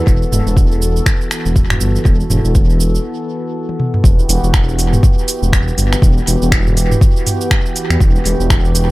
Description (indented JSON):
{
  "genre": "afro house",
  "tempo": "121 BPM",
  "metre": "4/4",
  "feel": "swing 58% on 16ths",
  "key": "E minor",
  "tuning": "A4 = 439 Hz",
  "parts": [
    { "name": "warm analog pad", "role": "sustained chords", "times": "0.0-8.9 s", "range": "E3 to A4", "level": "-21 LUFS", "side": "equal", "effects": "chorus, sidechain pumping" },
    { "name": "dark detuned saw bass", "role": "bass", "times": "0.0-8.9 s", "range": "E1 to E2", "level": "-15 LUFS", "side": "equal", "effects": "sidechain pumping" },
    { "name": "afro-pop drum kit", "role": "drums", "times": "0.1-8.9 s", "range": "finger snaps, hi-hat, shaker, toms", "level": "-19 LUFS", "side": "right 1 dB", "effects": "dub echo" },
    { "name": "electronic kick drum", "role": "drums", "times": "0.1-8.6 s", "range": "none", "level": "-12 LUFS", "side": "equal", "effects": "none" }
  ],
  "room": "digital ambience",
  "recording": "echo-heavy mix",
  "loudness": "-11 LUFS",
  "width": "side -19 dB against mid",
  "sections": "0.0-4.0 A section; 4.0-8.9 B section",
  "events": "break 3.0-4.0; drum fill 3.7-4.0; drop 4.0-8.9",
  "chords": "0.0 Esus2; 4.0 Emadd9"
}